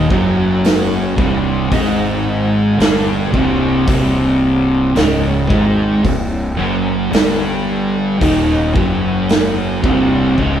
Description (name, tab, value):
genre	stoner and doom metal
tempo	55 BPM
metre	4/4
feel	straight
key	unclear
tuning	A4 = 440 Hz
part	crunchy overdriven guitar	riff	0.0-10.6 s	C2 to Ab3	-19 LUFS	equal	none
part	thick fuzz guitar	riff	0.0-10.6 s	C2 to Ab3	-16 LUFS	right 1 dB	distortion
part	fuzz fingered electric bass	bass	0.0-10.6 s	C1 to Ab1	-20 LUFS	left 1 dB	overdrive
part	big rock drum kit	drums	0.1-10.6 s	hi-hat, kick drum, snare drum	-18 LUFS	equal	none
room	light reverb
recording	band playing live in one room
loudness	-13 LUFS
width	side -9 dB against mid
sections	0.0-10.6 A section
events	drum fill 10.4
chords	0.0 Cm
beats	0.64 1.72 2.79 | 3.88 4.96 6.04 7.12 | 8.21 9.29 10.38